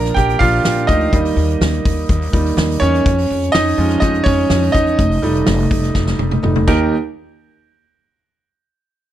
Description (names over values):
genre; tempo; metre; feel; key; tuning
piano-driven pop; 124 BPM; 4/4; straight; Eb major; A4 = 440 Hz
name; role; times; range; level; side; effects
clear concert grand piano; accompaniment; 0.0-6.9 s; Eb2 to Bb5; -16 LUFS; right 2 dB; none
upright bass; bass; 0.0-6.9 s; F1 to F2; -18 LUFS; left 1 dB; none
loose indie drum kit; drums; 0.0-6.8 s; crash cymbal, hi-hat, kick drum, snare drum, toms; -19 LUFS; equal; none
room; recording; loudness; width
small room ambience; none; -13 LUFS; side -12 dB against mid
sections
0.0-6.9 A section; 6.9-8.9 B section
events
grand piano solo 0.0-6.9; drum fill 6.0-6.9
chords
0.0 Bb; 1.1 Eb; 3.1 Db/F; 5.0 F7; 6.7 Eb; 6.9 N.C.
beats
0.16 0.65 | 1.13 1.61 2.09 2.58 | 3.06 3.54 4.03 4.51 | 4.99 5.47 5.96 6.44 | 6.92